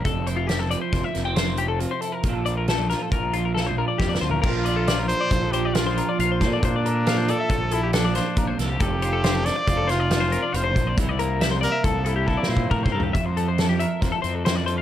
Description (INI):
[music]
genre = math rock and midwest emo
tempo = 138 BPM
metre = 5/4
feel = straight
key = F major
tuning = A4 = 441 Hz
[part]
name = clean electric guitar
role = accompaniment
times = 0.0-14.8 s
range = F2 to Bb4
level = -29 LUFS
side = right 8 dB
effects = lush chorus
[part]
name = twelve-string electric guitar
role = arpeggios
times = 0.0-14.8 s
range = F4 to G5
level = -27 LUFS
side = left 7 dB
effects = analog delay
[part]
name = fuzz fingered electric bass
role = bass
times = 0.0-14.8 s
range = F1 to Bb2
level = -26 LUFS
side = equal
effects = overdrive
[part]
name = loose indie drum kit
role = drums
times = 0.1-14.8 s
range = crash cymbal, hi-hat, kick drum, snare drum, toms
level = -25 LUFS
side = equal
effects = none
[part]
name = clear trumpet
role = melody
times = 4.5-12.7 s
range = D4 to D5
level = -27 LUFS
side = equal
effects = none
[sound]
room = little or no reverb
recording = none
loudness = -20 LUFS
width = side -11 dB against mid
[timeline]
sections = 0.0-4.4 A section; 4.4-13.2 B section; 13.2-14.8 A section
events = drum fill 3.6-4.4, 12.3-13.2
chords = 0.1 Fmaj9; 2.3 Bbmaj7; 4.4 Bbmaj9; 8.8 F69; 11.0 C13; 13.2 Fmaj7